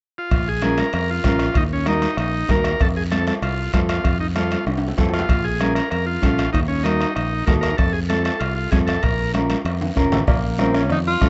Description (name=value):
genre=latin, cumbia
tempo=193 BPM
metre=4/4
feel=straight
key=Bb harmonic minor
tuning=A4 = 440 Hz
part: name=overdriven combo organ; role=melody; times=0.2-9.3 s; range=Db4 to Bb4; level=-27 LUFS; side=equal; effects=none
part: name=fingered electric bass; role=bass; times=0.3-11.3 s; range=F1 to F2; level=-26 LUFS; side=equal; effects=none
part: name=bombo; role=percussion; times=0.3-11.3 s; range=none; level=-25 LUFS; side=equal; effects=none
part: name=guiro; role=percussion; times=0.3-11.3 s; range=none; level=-39 LUFS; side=equal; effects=none
part: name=timbales and cowbell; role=percussion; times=0.3-11.1 s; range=none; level=-35 LUFS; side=equal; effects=none
part: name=mellow electric guitar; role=accompaniment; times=0.6-11.3 s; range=C4 to Bb4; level=-27 LUFS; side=equal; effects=none
part: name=congas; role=percussion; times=0.6-11.3 s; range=none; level=-30 LUFS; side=equal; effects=none
part: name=raspy tenor saxophone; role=second line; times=10.3-11.3 s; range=Bb3 to F4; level=-26 LUFS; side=equal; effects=none
room=light reverb, small room ambience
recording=rough home demo mix, nothing above 7.9 kHz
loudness=-20 LUFS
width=mono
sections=0.3-10.3 A section; 10.3-11.3 B section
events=drum fill 4.7-5.3, 9.5-10.3; tenor saxophone solo 10.3-11.3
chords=0.3 Bbm; 1.6 Ebm; 2.8 F; 5.3 Bbm; 6.5 Ebm; 7.8 F; 9.0 Bbm